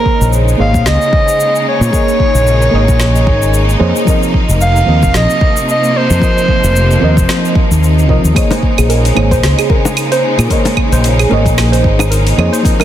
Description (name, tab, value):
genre	sunset chillout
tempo	112 BPM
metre	4/4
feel	swing 56% on 16ths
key	Bb minor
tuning	A4 = 439 Hz
part	breathy soprano saxophone	melody	0.0-7.6 s	Bb4 to F5	-15 LUFS	equal	digital delay
part	mellow FM electric piano	accompaniment	0.0-12.8 s	F3 to Eb5	-17 LUFS	right 1 dB	chorus, auto-pan, digital delay
part	bright studio string section	sustained chords	0.0-12.8 s	C3 to Eb4	-18 LUFS	equal	none
part	electronic kick drum	drums	0.1-12.8 s	none	-14 LUFS	equal	small room reverb
part	fretless electric bass	bass	0.2-12.5 s	F1 to Bb2	-11 LUFS	equal	none
part	deep house drum kit	drums	0.2-12.8 s	claves, hi-hat, shaker, snare drum	-20 LUFS	right 1 dB	small room reverb
part	soft round pluck	arpeggios	8.5-12.8 s	Ab4 to C5	-18 LUFS	right 2 dB	chorus, digital delay
part	bongos	percussion	8.5-12.8 s	none	-20 LUFS	left 5 dB	none
room	light reverb, digital ambience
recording	dense, heavily limited modern master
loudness	-9 LUFS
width	side -11 dB against mid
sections	0.0-12.8 A section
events	none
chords	0.0 Bbm11; 4.1 F7sus4; 8.4 Bbm11